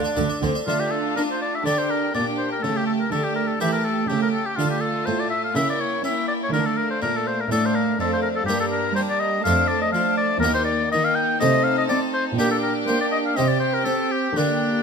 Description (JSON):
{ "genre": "classical, baroque-style concerto movement with solo episodes", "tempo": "123 BPM", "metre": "4/4", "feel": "straight", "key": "D minor, G minor from 8.5 s", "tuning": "A4 = 441 Hz", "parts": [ { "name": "warm chamber violin section", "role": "melody", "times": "0.0-14.8 s", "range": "D5 to Bb5", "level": "-37 LUFS", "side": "left 2 dB", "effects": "none" }, { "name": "warm oboe", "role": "melody", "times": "0.0-14.8 s", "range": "D4 to G5", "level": "-24 LUFS", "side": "left 3 dB", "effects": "none" }, { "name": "clear chamber violin section", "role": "second line", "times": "0.0-14.8 s", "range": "D4 to G4", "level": "-32 LUFS", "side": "left 2 dB", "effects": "none" }, { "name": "harpsichord", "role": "accompaniment", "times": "0.0-14.8 s", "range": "Eb2 to A#4", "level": "-27 LUFS", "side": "left 1 dB", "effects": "none" }, { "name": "warm studio viola section", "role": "accompaniment", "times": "0.2-14.8 s", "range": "G3 to D4", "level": "-27 LUFS", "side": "right 3 dB", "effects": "none" }, { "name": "rich chamber double bass section", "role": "bass", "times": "0.2-0.5 s", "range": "D2", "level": "-30 LUFS", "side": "right 5 dB", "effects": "none" }, { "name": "warm chamber cello section", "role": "bass", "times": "0.2-14.8 s", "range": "Eb2 to D4", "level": "-28 LUFS", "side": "right 3 dB", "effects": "none" } ], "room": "light reverb", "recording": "close, detailed microphones", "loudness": "-20 LUFS", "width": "side -6 dB against mid", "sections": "0.7-14.8 A section", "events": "none", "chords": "0.0 D5; 0.7 Dm; 1.7 Gm/D; 2.6 A7/C#; 4.6 Dm; 5.6 C#dim7; 6.5 Dm; 8.5 Gm; 9.5 Dm/F; 10.4 Eb; 11.4 Adim/C; 12.4 Gm/Bb; 13.4 C5" }